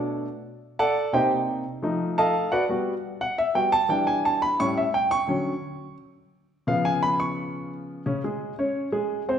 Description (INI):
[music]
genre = jazz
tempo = 173 BPM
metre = 4/4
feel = straight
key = unclear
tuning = A4 = 441 Hz
[part]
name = warm baby grand piano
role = solo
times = 0.0-9.4 s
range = A2 to C#6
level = -23 LUFS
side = equal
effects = none
[sound]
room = wet recital hall reverb, RT60 1.4 s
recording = recorded in a church or concert hall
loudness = -22 LUFS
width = side -8 dB against mid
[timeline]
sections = 0.0-8.1 A section; 8.1-9.4 B section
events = grand piano solo 0.0-8.1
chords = 0.0 Bm7; 1.1 Cm7; 1.8 F7; 2.5 Gmaj7; 3.9 Em7; 4.6 A7; 5.3 Dmaj7; 6.7 C#7; 8.1 Abadd11/Db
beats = 0.10 0.44 0.79 | 1.13 1.48 1.82 2.17 | 2.52 2.86 3.21 3.55 | 3.90 4.25 4.59 4.94 | 5.29 5.63 5.98 6.33 | 6.67 7.02 7.37 7.71 | 8.06 8.41 8.76 9.11